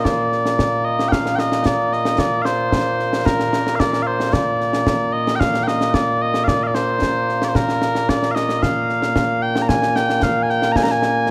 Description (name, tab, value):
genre	scottish traditional, Scottish pipe music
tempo	112 BPM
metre	4/4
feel	straight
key	Bb mixolydian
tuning	A4 = 437 Hz
part	mellow small bagpipes	melody	0.0-11.3 s	Bb2 to Bb5	-20 LUFS	equal	tape echo
part	concert snare drum and concert bass drum	drums	0.1-11.2 s	none	-24 LUFS	equal	none
room	moderate recital hall reverb, RT60 1.4 s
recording	none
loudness	-19 LUFS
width	mono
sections	0.0-11.3 A section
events	none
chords	none